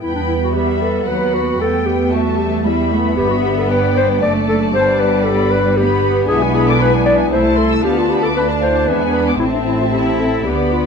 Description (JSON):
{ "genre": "quick classical-period movement for symphony orchestra", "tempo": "115 BPM", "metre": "3/4", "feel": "straight", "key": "E minor, A minor from 6.3 s", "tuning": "A4 = 440 Hz", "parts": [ { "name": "muted studio violin section", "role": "melody", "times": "0.0-10.9 s", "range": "G5 to B5", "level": "-26 LUFS", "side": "left 2 dB", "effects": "none" }, { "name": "mellow clarinet", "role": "second line", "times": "0.0-10.8 s", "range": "D4 to D5", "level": "-18 LUFS", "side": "left 2 dB", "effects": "none" }, { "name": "muted studio violin section", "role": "second line", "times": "0.0-10.9 s", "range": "B4 to E6", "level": "-24 LUFS", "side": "left 4 dB", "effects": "none" }, { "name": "muted studio viola section", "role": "accompaniment", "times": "0.0-10.9 s", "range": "G3 to E4", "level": "-21 LUFS", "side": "right 3 dB", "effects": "none" }, { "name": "dark French horn section", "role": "sustained chords", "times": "0.0-10.9 s", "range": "F#3 to F4", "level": "-22 LUFS", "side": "left 6 dB", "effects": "none" }, { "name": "muted studio double bass section", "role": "bass", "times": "0.0-10.9 s", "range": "F#1 to E2", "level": "-21 LUFS", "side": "right 4 dB", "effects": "none" }, { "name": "muted studio cello section", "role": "bass", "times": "0.5-10.9 s", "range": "F#3 to E4", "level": "-22 LUFS", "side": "equal", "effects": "none" } ], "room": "moderate recital hall reverb, RT60 1.4 s", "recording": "close, detailed microphones", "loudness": "-13 LUFS", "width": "side -6 dB against mid", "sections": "0.0-10.9 A section", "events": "none", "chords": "0.0 Em; 1.1 B/D#; 1.6 Em; 3.2 G; 4.2 D/F#; 4.7 G; 6.3 E7/B; 7.3 Am/C; 7.8 Bm7b5/D; 8.9 E7; 9.4 Am" }